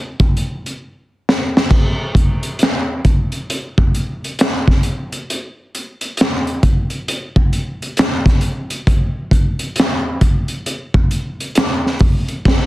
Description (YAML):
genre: R&B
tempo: 67 BPM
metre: 4/4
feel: swing 63% on 16ths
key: none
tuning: none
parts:
  - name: crunchy breakbeat drum kit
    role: drums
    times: 0.2-12.7 s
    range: crash cymbal, handclaps, hi-hat, kick drum, snare drum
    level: -14 LUFS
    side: equal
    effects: none
room: light reverb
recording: dense, heavily limited modern master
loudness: -15 LUFS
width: side -18 dB against mid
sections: 0.0-1.7 A section; 1.7-12.7 A section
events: drum fill 0.8-1.7; band accent 12.5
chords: none